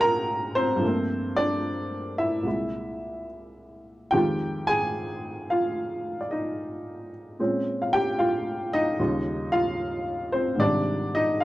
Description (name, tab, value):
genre	solo jazz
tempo	74 BPM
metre	4/4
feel	swing 68% on 8ths, rubato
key	unclear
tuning	A4 = 440 Hz
part	dark upright piano	solo	0.0-11.4 s	C2 to Bb5	-24 LUFS	equal	none
room	light reverb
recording	close, detailed microphones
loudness	-24 LUFS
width	side -16 dB against mid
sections	0.0-11.4 A section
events	none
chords	0.0 Absus2; 0.8 Gm11; 2.5 C7b13; 4.1 Fm9; 7.4 Bbm9; 9.0 Eb9; 10.6 Abmaj7#11